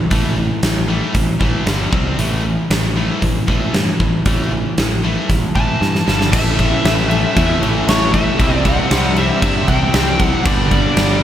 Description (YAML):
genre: hard rock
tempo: 116 BPM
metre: 4/4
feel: straight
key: unclear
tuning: A4 = 440 Hz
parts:
  - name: high-gain distorted guitar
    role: riff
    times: 0.0-11.2 s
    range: G2 to C4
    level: -20 LUFS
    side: equal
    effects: distortion, slapback echo
  - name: modern bright picked electric bass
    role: bass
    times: 0.0-11.2 s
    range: G1 to G2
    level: -20 LUFS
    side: equal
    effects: none
  - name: huge arena drum kit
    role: drums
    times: 0.1-11.1 s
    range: crash cymbal, hi-hat, kick drum, snare drum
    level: -17 LUFS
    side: equal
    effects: none
  - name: nasal lead guitar with a parked wah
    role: melody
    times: 5.6-11.2 s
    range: C#5 to A5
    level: -20 LUFS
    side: equal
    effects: overdrive
  - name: bright tonewheel organ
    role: sustained chords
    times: 6.3-11.2 s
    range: G3 to D5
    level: -31 LUFS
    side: right 1 dB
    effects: none
  - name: overdriven electric guitar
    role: riff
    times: 6.3-11.2 s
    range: A2 to G4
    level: -21 LUFS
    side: equal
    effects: slapback echo
room: light reverb, studio ambience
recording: none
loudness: -13 LUFS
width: side -11 dB against mid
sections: 0.0-6.3 A section; 6.3-11.2 B section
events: drum fill 5.8-6.3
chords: 0.0 A5; 1.7 G5; 1.9 C5; 2.2 A5; 6.1 G5; 6.3 A; 8.4 C; 10.5 G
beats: | 0.11 0.63 1.15 1.67 | 2.19 2.71 3.22 3.74 | 4.26 4.78 5.30 5.81 | 6.33 6.85 7.36 7.88 | 8.39 8.91 9.42 9.94 | 10.46 10.97